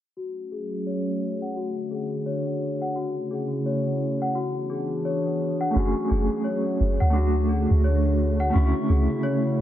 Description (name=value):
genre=trip hop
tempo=86 BPM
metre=4/4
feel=swing 60% on 16ths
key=F# minor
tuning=A4 = 441 Hz
part: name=warbly tape-like pad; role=sustained chords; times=0.5-9.6 s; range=C#3 to G#4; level=-28 LUFS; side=equal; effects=chorus, built-in reverb
part: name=large celesta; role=arpeggios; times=0.2-9.6 s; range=F#4 to F#5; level=-28 LUFS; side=left 3 dB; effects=low-pass filter, tape echo
part: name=mellow electric guitar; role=accompaniment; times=5.7-9.6 s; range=A3 to G#4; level=-26 LUFS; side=right 2 dB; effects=tremolo, tape echo
part: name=soft 808-style bass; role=bass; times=5.8-9.1 s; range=F#1 to D2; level=-21 LUFS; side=equal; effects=none
room=light reverb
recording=low-pass filter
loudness=-22 LUFS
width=side -12 dB against mid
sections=0.2-9.6 A section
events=filter sweep on celesta 0.2-9.6; filter sweep 0.2-9.6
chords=0.2 F#madd9; 1.6 D; 3.0 A/C#; 4.4 E7; 5.7 F#madd9; 7.1 D; 8.5 A/C#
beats=| 0.17 0.86 1.56 2.26 | 2.96 3.65 4.35 5.05 | 5.75 6.45 7.14 7.84 | 8.54 9.24